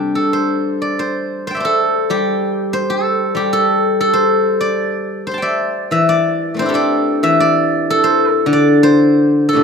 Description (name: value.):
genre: chinese traditional, Chinese solo plucked strings.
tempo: 87-98 BPM.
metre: 2/4.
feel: rubato.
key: G zhi mode.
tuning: A4 = 439 Hz.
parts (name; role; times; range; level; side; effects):
steel-string zither; solo; 0.0-9.6 s; A2 to C6; -13 LUFS; equal; none.
room: moderate recital hall reverb, RT60 1.4 s.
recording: minimal, uncompressed stereo recording.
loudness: -13 LUFS.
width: side -6 dB against mid.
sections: 0.8-9.6 A section.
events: none.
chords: none.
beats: 0.14 | 0.82 1.48 | 2.11 2.73 | 3.36 3.99 | 4.61 5.26 | 5.93 6.59 | 7.24 7.87 | 8.48 9.12.